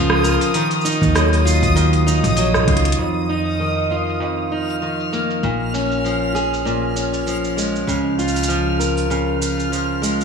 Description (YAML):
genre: folktronica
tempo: 98 BPM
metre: 4/4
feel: swing 56% on 16ths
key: unclear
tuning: A4 = 440 Hz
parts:
  - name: fingerpicked steel-string acoustic guitar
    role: arpeggios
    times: 0.0-10.2 s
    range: F2 to Bb4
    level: -19 LUFS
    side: equal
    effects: low-pass filter, tape echo
  - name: upright bass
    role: bass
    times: 0.0-10.2 s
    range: Bb1 to F2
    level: -22 LUFS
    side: right 1 dB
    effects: none
  - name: backwards swelling texture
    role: texture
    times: 0.0-10.2 s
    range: Eb6 to F6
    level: -26 LUFS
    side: left 2 dB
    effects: built-in reverb
  - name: organic electronic drum kit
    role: drums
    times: 0.1-10.2 s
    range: cabasa, hi-hat, rim click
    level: -24 LUFS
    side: right 2 dB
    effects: low-pass filter on hats, low-pass filter on perc, low-pass filter on snare, low-pass filter on room
  - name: electronic kick drum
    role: drums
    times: 1.0-2.8 s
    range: none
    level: -23 LUFS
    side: equal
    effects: none
room: light reverb, digital ambience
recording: studio reverb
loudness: -16 LUFS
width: side -6 dB against mid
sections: 0.0-3.0 A section; 3.0-10.2 B section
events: drum fill 2.7-3.0; filter sweep on drum 3.0-10.2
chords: 0.0 Db6; 0.5 Ebmadd9; 3.0 F7sus4; 5.4 Bbm7; 7.9 Db6